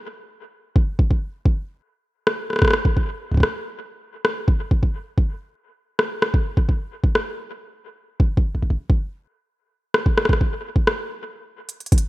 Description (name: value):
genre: IDM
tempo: 129 BPM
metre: 4/4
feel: straight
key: none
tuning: none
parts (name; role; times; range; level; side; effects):
- electronic kick drum; drums; 0.8-12.0 s; none; -18 LUFS; equal; overdrive
- organic electronic drum kit; drums; 2.3-12.0 s; hi-hat, rim click; -22 LUFS; equal; overdrive, dub echo
room: light reverb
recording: echo-heavy mix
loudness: -19 LUFS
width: side -18 dB against mid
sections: 0.0-11.9 A section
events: stop 11.5-11.9; drum fill 11.7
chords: none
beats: 0.29 | 0.76 1.22 1.69 2.15 | 2.62 3.08 3.55 4.01 | 4.48 4.94 5.41 5.87 | 6.34 6.80 7.27 7.73 | 8.20 8.66 9.13 9.59 | 10.06 10.53 10.99 11.46 | 11.92